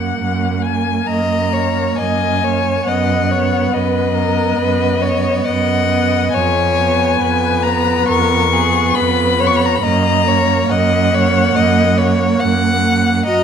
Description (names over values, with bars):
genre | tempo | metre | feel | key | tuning
classical, slow romantic movement for string quartet | 69 BPM | 4/4 | rubato | F# major | A4 = 440 Hz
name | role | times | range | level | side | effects
rich violin | melody | 0.0-13.4 s | D#5 to C#6 | -18 LUFS | left 9 dB | none
warm viola | accompaniment | 0.0-13.4 s | A#3 to Gb4 | -20 LUFS | right 4 dB | none
rich cello | bass | 0.0-13.4 s | E#2 to F#2 | -18 LUFS | right 4 dB | none
rich violin | second line | 1.1-13.4 s | G#4 to F#5 | -18 LUFS | left 2 dB | none
room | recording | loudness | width
moderate recital hall reverb, RT60 1.5 s | none | -13 LUFS | side -7 dB against mid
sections
0.0-13.4 A section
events
none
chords
0.0 F#; 2.9 B/F#; 6.3 C#7/E#; 9.8 F#